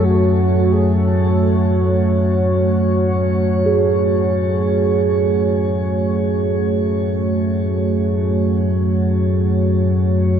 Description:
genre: ambient.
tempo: free time.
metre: none.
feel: none.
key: F# minor.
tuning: A4 = 439 Hz.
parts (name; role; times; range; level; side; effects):
mellow horn-like synth lead; melody; 0.0-1.8 s; F#4 to A4; -26 LUFS; equal; lush chorus, shimmer reverb, ping-pong delay.
dark analog pad; sustained chords; 0.0-10.4 s; A3 to C#5; -19 LUFS; right 1 dB; chorus, shimmer reverb.
deep rumbling drone; drone; 0.0-10.4 s; F#2 to F#3; -18 LUFS; equal; built-in reverb, lush chorus.
bronze singing bowl; texture; 3.7-10.4 s; G#4; -22 LUFS; right 6 dB; shimmer reverb.
room: wet plate reverb, RT60 3.4 s.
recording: dreamy mix soaked in reverb.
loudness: -15 LUFS.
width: side -8 dB against mid.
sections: 0.0-3.7 A section; 3.7-10.4 B section.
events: none.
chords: 0.0 F#m.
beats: free time.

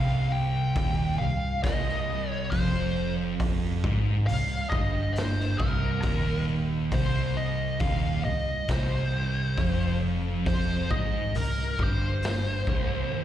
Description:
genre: stoner and doom metal.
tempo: 68 BPM.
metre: 4/4.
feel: straight.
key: C minor.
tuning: A4 = 439 Hz.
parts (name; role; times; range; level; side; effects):
fuzz lead guitar; melody; 0.0-13.2 s; Bb4 to G5; -32 LUFS; left 1 dB; wah, distortion, slapback echo.
thick fuzz guitar; riff; 0.0-13.2 s; C2 to Ab2; -32 LUFS; left 7 dB; distortion.
thick fuzz guitar; riff; 0.0-13.2 s; C2 to Ab2; -29 LUFS; right 5 dB; distortion.
hollow-body short-scale fingered electric bass; bass; 0.0-13.1 s; C1 to Ab1; -32 LUFS; left 1 dB; overdrive.
raw garage drum kit; drums; 0.8-12.9 s; hi-hat, kick drum, snare drum; -32 LUFS; left 1 dB; none.
room: small room ambience.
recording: live gig heard through the venue's PA, recital hall reverb.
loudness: -24 LUFS.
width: side -11 dB against mid.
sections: 0.0-13.2 A section.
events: none.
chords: 0.0 Cm.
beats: 0.76 1.65 2.53 | 3.41 4.29 5.17 6.05 | 6.93 7.82 8.70 9.58 | 10.46 11.34 12.22 13.11.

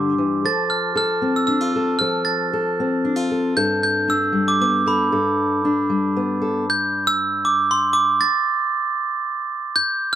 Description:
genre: folk.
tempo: 116 BPM.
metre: 3/4.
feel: straight.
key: unclear.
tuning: A4 = 441 Hz.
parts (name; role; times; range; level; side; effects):
glockenspiel with brass mallets; melody; 0.0-10.2 s; B5 to A6; -20 LUFS; right 3 dB; none.
fingerpicked steel-string acoustic guitar; accompaniment; 0.0-8.2 s; G2 to A4; -21 LUFS; left 2 dB; none.
room: light reverb.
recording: dry, close 1970s-style studio recording.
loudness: -18 LUFS.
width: side -11 dB against mid.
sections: 0.0-6.7 A section; 6.7-10.2 B section.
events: none.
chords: 0.4 F; 3.6 Gadd9; 6.7 G5; 8.2 N.C..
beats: | 0.44 0.96 1.48 | 2.00 2.52 3.04 | 3.56 4.08 4.60 | 5.12 5.63 6.15 | 6.67 7.18 7.70 | 8.21 8.73 9.24 | 9.76.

